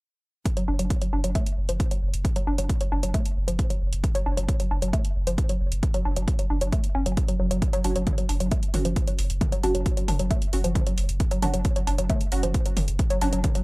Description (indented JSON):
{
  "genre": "driving peak-time techno",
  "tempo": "134 BPM",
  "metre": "4/4",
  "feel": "straight",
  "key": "F# harmonic minor",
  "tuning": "A4 = 439 Hz",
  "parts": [
    { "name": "electronic kick drum", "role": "drums", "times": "0.5-13.5 s", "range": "none", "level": "-24 LUFS", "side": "equal", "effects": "none" },
    { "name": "techno drum kit", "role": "drums", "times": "0.5-13.6 s", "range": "hi-hat, toms", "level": "-33 LUFS", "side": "equal", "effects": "none" },
    { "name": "woody wave-folded pluck", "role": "riff", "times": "0.6-13.6 s", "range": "E#3 to D4", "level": "-29 LUFS", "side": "equal", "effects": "chorus, tube saturation, sidechain pumping, analog delay" },
    { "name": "saturated sub bass", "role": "bass", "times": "0.7-13.4 s", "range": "F#1", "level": "-27 LUFS", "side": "equal", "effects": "overdrive, sidechain pumping, low-pass filter" },
    { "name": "filtered dub chord stab", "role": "stabs", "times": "7.8-13.3 s", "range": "F#3 to F#4", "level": "-30 LUFS", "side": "right 2 dB", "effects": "phaser, analog chorus, vintage 12-bit sampler grit, sidechain pumping, tape echo" }
  ],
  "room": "digital ambience",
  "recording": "dry, gritty hardware recording",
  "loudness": "-22 LUFS",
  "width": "side -23 dB against mid",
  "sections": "0.5-13.6 A section",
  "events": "none",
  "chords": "0.5 F#5"
}